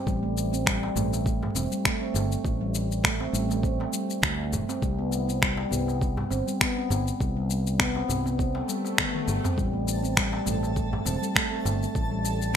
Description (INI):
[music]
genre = organic downtempo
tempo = 101 BPM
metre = 4/4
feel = swing 56% on 16ths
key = A minor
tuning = A4 = 441 Hz
[part]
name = handpan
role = arpeggios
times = 0.0-12.6 s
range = G3 to C4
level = -29 LUFS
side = equal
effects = ping-pong delay
[part]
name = fretless electric bass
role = bass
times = 0.1-12.6 s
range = E1 to D2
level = -29 LUFS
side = equal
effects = none
[part]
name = afro-pop drum kit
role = drums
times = 0.1-12.5 s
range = finger snaps, shaker, toms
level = -27 LUFS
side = left 1 dB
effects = gated reverb
[part]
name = electronic kick drum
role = drums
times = 0.1-12.1 s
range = none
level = -30 LUFS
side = equal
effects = overdrive
[part]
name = darbuka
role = percussion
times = 0.4-12.4 s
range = none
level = -36 LUFS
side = left 1 dB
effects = none
[part]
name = swell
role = sound effects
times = 8.6-9.6 s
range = none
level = -36 LUFS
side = left 2 dB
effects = none
[part]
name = twinkling granular texture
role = texture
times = 10.0-12.6 s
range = A4 to A5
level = -35 LUFS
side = right 2 dB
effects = built-in reverb
[sound]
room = moderate plate reverb, RT60 1.2 s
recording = bright 1980s-style digital production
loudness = -24 LUFS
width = side -8 dB against mid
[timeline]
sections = 0.0-12.6 A section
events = swell 8.6-9.6; drum fill 9.0-9.6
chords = 0.1 Am7; 4.8 C5; 9.6 A7(no3)